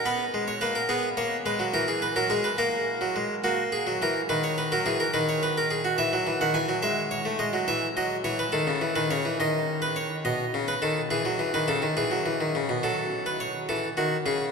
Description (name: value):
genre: classical, baroque-style two-part invention for harpsichord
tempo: 70 BPM (dotted quarters)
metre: 12/8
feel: straight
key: E major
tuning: A4 = 441 Hz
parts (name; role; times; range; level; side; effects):
- harpsichord; solo; 0.0-14.5 s; B2 to G#5; -24 LUFS; equal; none
room: wet cathedral reverb, RT60 5.2 s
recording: recorded in a church or concert hall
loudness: -24 LUFS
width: side -5 dB against mid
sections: 0.0-12.8 A section; 12.8-14.5 B section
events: none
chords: 0.0 N.C.; 0.9 E; 2.6 F#; 4.3 B/D#; 6.0 E; 7.7 A/E; 9.4 B/D#; 11.1 E; 12.8 D#m7b5 (rootless)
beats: 0.06 0.90 1.75 | 2.60 3.45 4.30 5.15 | 6.00 6.84 7.69 8.55 | 9.40 10.25 11.11 11.97 | 12.83 13.68